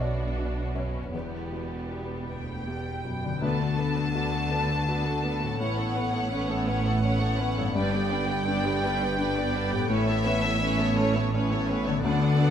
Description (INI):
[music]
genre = cinematic, emotional film score for orchestra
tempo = 56 BPM (dotted quarters)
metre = 6/8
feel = rubato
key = unclear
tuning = A4 = 440 Hz
[part]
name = rich studio violin section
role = melody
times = 0.0-12.5 s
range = F#4 to A5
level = -32 LUFS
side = left 2 dB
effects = none
[part]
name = rich studio violin section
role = second line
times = 0.0-12.5 s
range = G3 to D5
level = -34 LUFS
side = right 1 dB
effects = none
[part]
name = felt-muted upright piano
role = accompaniment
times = 0.0-12.5 s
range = B1 to E5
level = -32 LUFS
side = left 2 dB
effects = none
[part]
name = rich studio viola section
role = accompaniment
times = 0.0-12.5 s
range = G3 to G4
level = -35 LUFS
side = right 3 dB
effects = none
[part]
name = concert harp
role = arpeggios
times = 0.0-12.5 s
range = G2 to G5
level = -33 LUFS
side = left 7 dB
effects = none
[part]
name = rich studio cello section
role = bass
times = 0.0-12.5 s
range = D2 to D3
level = -31 LUFS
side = right 2 dB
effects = none
[part]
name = rich studio double bass section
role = bass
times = 0.0-12.5 s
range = E1 to D2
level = -32 LUFS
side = right 2 dB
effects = none
[sound]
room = moderate scoring stage reverb, RT60 1.8 s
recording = close, detailed microphones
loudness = -24 LUFS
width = side -9 dB against mid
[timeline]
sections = 0.0-3.4 A section; 3.4-12.5 B section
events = none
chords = 0.0 Bm; 1.1 Em; 3.4 D6; 5.6 Aadd9; 7.8 G; 9.9 Aadd9